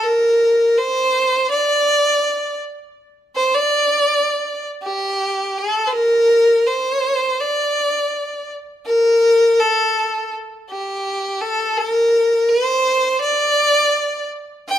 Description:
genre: indian classical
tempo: free time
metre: none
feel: none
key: unclear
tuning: A4 = 439 Hz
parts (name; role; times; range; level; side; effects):
- clear violin; solo; 0.0-14.8 s; G4 to G5; -15 LUFS; equal; none
room: light reverb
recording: minimal, uncompressed stereo recording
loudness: -15 LUFS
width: side -10 dB against mid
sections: 0.0-14.8 A section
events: none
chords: none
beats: free time

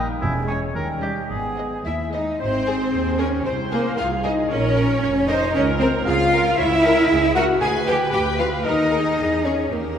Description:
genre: cinematic, playful, whimsical film cue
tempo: 114 BPM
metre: 2/4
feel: straight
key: Ab major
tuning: A4 = 442 Hz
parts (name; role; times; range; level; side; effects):
- warm studio violin section; melody; 0.0-9.5 s; Ab4 to G#5; -32 LUFS; left 3 dB; none
- mellow clarinet; second line; 0.0-10.0 s; B3 to Ab5; -29 LUFS; left 1 dB; none
- rich studio violin section; second line; 0.0-10.0 s; B3 to Ab5; -30 LUFS; left 1 dB; none
- warm oboe; second line; 0.0-1.8 s; E4 to C#5; -30 LUFS; right 1 dB; none
- rich studio viola section; accompaniment; 0.0-10.0 s; G3 to Db5; -28 LUFS; right 1 dB; none
- warm French horn section; sustained chords; 0.0-10.0 s; G3 to Ab4; -25 LUFS; left 2 dB; none
- clear studio double bass section; bass; 0.0-10.0 s; E1 to E2; -26 LUFS; right 2 dB; none
- rich studio cello section; bass; 0.0-10.0 s; D#2 to Ab4; -24 LUFS; right 2 dB; none
- mellow hollow concert flute; second line; 0.2-10.0 s; A#4 to G#5; -28 LUFS; left 2 dB; none
room: wet concert hall reverb, RT60 2.1 s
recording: none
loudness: -18 LUFS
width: side -8 dB against mid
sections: 0.0-2.4 A section; 2.4-10.0 B section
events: none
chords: 0.2 C#m/E; 0.8 D#7; 1.3 G#m; 2.4 Ab; 3.5 Ab/C; 4.5 Bbm; 5.5 Bbm/Db; 6.6 A#dim/C#; 7.6 Ddim7; 8.7 D#5; 9.2 C#m/E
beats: | 0.22 0.75 | 1.30 1.85 | 2.40 2.93 | 3.45 3.98 | 4.50 5.02 | 5.55 6.07 | 6.58 7.10 | 7.62 8.13 | 8.65 9.18 | 9.72

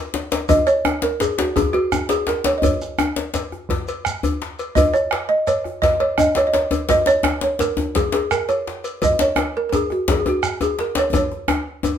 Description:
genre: west african traditional, West African drum ensemble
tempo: 113 BPM (dotted quarters)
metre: 12/8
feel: straight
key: unclear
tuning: A4 = 440 Hz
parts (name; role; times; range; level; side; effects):
- djembe; percussion; 0.1-11.7 s; none; -29 LUFS; left 4 dB; none
- djembe; percussion; 0.1-12.0 s; none; -22 LUFS; left 4 dB; none
- cowbell; percussion; 0.3-12.0 s; none; -28 LUFS; left 3 dB; none
- shekere; percussion; 0.3-12.0 s; none; -31 LUFS; right 2 dB; none
- balafon; melody; 0.5-11.6 s; F#4 to D#5; -19 LUFS; right 1 dB; none
- bombo; percussion; 0.5-11.6 s; none; -25 LUFS; right 3 dB; none
room: moderate studio reverb, RT60 0.6 s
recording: minimal, uncompressed stereo recording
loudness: -17 LUFS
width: side -9 dB against mid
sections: 0.0-12.0 A section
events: drum fill 11.1-12.0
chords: none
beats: | 0.50 1.03 1.57 2.10 | 2.64 3.17 3.70 4.24 | 4.77 5.30 5.84 6.37 | 6.90 7.43 7.96 8.49 | 9.02 9.55 10.08 10.61 | 11.14 11.66

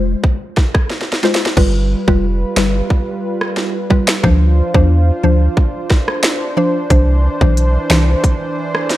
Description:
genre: dancehall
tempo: 90 BPM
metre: 4/4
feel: straight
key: unclear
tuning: A4 = 438 Hz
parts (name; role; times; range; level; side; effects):
- mallet-like synth pluck; accompaniment; 0.0-8.1 s; E3 to C5; -18 LUFS; left 1 dB; chorus, phaser
- punchy sub bass; bass; 0.0-8.2 s; F1 to E2; -13 LUFS; equal; none
- island pop drum kit; drums; 0.2-9.0 s; crash cymbal, finger snaps, hi-hat, kick drum, rim click, snare drum; -15 LUFS; equal; overdrive
- warm analog pad; sustained chords; 1.6-9.0 s; E3 to C5; -21 LUFS; right 1 dB; chorus, sidechain pumping
room: light reverb, digital ambience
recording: dark, warm production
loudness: -12 LUFS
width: side -15 dB against mid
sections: 0.0-1.6 A section; 1.6-9.0 B section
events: drum fill 0.9-1.6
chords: 0.0 Fm; 1.6 G7; 4.2 Dm7; 6.9 Cadd9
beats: 0.24 0.90 | 1.57 2.24 2.90 3.57 | 4.24 4.90 5.57 6.24 | 6.90 7.57 8.24 8.90

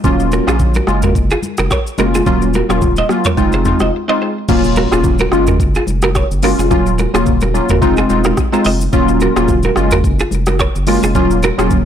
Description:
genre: afrobeats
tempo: 108 BPM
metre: 4/4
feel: swing 55% on 16ths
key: Eb dorian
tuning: A4 = 441 Hz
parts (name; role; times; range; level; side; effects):
- glassy digital keys; accompaniment; 0.0-11.8 s; Gb3 to F4; -15 LUFS; left 1 dB; chorus
- saturated sub bass; bass; 0.0-11.8 s; Eb1 to Bb1; -17 LUFS; equal; none
- afro-pop drum kit; drums; 0.0-11.8 s; crash cymbal, hi-hat, kick drum, rim click, shaker, toms; -17 LUFS; equal; none
- congas; percussion; 0.0-11.8 s; none; -26 LUFS; left 4 dB; none
- clean electric guitar; riff; 0.3-11.7 s; F4 to Eb5; -19 LUFS; right 4 dB; tremolo, ping-pong delay
- impact; sound effects; 4.5-6.7 s; none; -26 LUFS; equal; none
room: digital ambience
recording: blown-out, overdriven recording, overdrive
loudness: -11 LUFS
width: side -9 dB against mid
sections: 0.0-4.5 A section; 4.5-11.8 B section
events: break 3.9-4.5; impact 4.5-6.7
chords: 0.0 Ebm7; 0.9 Gbmaj7; 2.3 Ebm7; 3.4 Fm7; 4.5 Ebm7; 5.3 Gbmaj7; 6.7 Ebm7; 7.8 Fm7; 8.9 Ebm7; 9.8 Gbmaj7; 11.2 Ebm7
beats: | 0.04 0.60 1.15 1.71 | 2.27 2.82 3.38 3.93 | 4.49 5.04 5.60 6.15 | 6.71 7.26 7.82 8.38 | 8.93 9.49 10.04 10.60 | 11.15 11.71

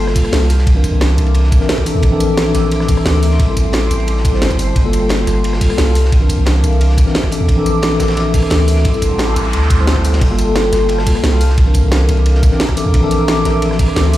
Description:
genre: liquid drum and bass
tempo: 176 BPM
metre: 4/4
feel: straight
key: Bb lydian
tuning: A4 = 440 Hz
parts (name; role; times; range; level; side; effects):
- mellow tine electric piano; accompaniment; 0.0-14.2 s; E3 to C5; -18 LUFS; left 1 dB; medium stereo tremolo, digital delay
- shimmering ambient pad; sustained chords; 0.0-14.2 s; A4 to D6; -22 LUFS; equal; chorus, built-in reverb, phaser, sidechain pumping
- long sustained 808-style bass; bass; 0.0-14.2 s; G1 to E2; -14 LUFS; equal; none
- crunchy breakbeat drum kit; drums; 0.1-14.2 s; hi-hat, ride cymbal, snare drum; -26 LUFS; equal; high-pass filter on cymbals, high-pass filter on hats, high-pass filter on snare, high-pass filter on room
- drum and bass drum kit; drums; 0.1-14.2 s; crash cymbal, hi-hat, rim click, snare drum, tambourine; -21 LUFS; equal; none
- electronic kick drum; drums; 0.2-13.9 s; none; -14 LUFS; equal; none
- noise sweep; sound effects; 9.0-10.2 s; none; -26 LUFS; right 3 dB; none
room: light reverb, studio reverb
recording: played on a big sound system in a bare room, stone room reverb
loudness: -11 LUFS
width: side -14 dB against mid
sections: 0.0-14.2 A section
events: noise sweep 9.0-10.2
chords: 0.5 C9; 2.0 Bbmaj9#11; 3.4 Am7; 4.8 Gm9; 6.0 C9; 7.5 Bbmaj9#11; 8.8 Am7; 10.2 Gm9; 11.4 C9; 12.9 Bbmaj9#11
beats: 0.33 | 0.67 1.01 1.35 1.69 | 2.03 2.37 2.71 3.06 | 3.40 3.74 4.08 4.42 | 4.76 5.10 5.44 5.78 | 6.12 6.46 6.80 7.15 | 7.49 7.83 8.17 8.51 | 8.85 9.19 9.53 9.87 | 10.21 10.55 10.90 11.24 | 11.58 11.92 12.26 12.60 | 12.94 13.28 13.62 13.96

